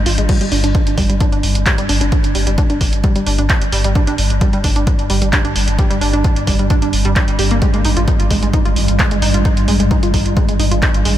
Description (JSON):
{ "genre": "driving peak-time techno", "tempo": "131 BPM", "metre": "4/4", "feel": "straight", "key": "unclear", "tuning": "A4 = 440 Hz", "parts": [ { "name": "warm sub bass", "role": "bass", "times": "0.0-11.2 s", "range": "G1 to Ab1", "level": "-19 LUFS", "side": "equal", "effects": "tube saturation, sidechain pumping, low-pass filter" }, { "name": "metallic inharmonic drone", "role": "drone", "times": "0.0-11.2 s", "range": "G2", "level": "-21 LUFS", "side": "equal", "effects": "chorus, built-in reverb, sidechain pumping" }, { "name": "analog pluck", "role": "riff", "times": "0.1-11.1 s", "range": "G3 to G4", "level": "-20 LUFS", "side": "right 1 dB", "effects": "chorus, cassette tape, sidechain pumping, diffuse ambient delay" }, { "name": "punchy analog drum machine", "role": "drums", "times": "0.1-11.1 s", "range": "crash cymbal, handclaps, hi-hat", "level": "-22 LUFS", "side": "equal", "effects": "sidechain pumping on hats, sidechain pumping on cymbals" }, { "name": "electronic kick drum", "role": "drums", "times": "0.3-10.9 s", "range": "none", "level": "-16 LUFS", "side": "equal", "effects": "none" } ], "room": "light reverb, digital ambience", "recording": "none", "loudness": "-12 LUFS", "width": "side -12 dB against mid", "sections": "0.0-11.2 A section", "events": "none", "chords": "0.3 G5; 7.6 Ab5", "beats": "| 0.29 0.75 1.21 1.66 | 2.12 2.58 3.04 3.50 | 3.95 4.41 4.87 5.33 | 5.79 6.24 6.70 7.16 | 7.62 8.08 8.54 8.99 | 9.45 9.91 10.37 10.82" }